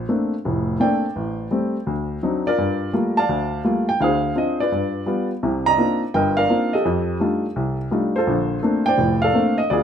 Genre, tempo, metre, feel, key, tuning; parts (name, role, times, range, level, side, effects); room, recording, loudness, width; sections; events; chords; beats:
solo jazz; 168 BPM; 4/4; swing 65% on 8ths; Bb major; A4 = 442 Hz
warm baby grand piano; solo; 0.0-9.8 s; F1 to Bb5; -18 LUFS; equal
light reverb; minimal, uncompressed stereo recording; -18 LUFS; side -8 dB against mid
0.0-9.8 A section
0.0 Bbmaj9; 1.2 Am7; 1.9 D7b9; 2.6 Gm9; 4.0 Dm7b5; 4.7 G7; 5.4 Cm11; 6.8 F13; 8.3 Bbmaj9
0.09 0.44 0.80 | 1.15 1.51 1.86 2.22 | 2.58 2.93 3.29 3.64 | 4.00 4.36 4.71 5.07 | 5.42 5.78 6.14 6.49 | 6.85 7.21 7.56 7.92 | 8.27 8.63 8.99 9.34 | 9.70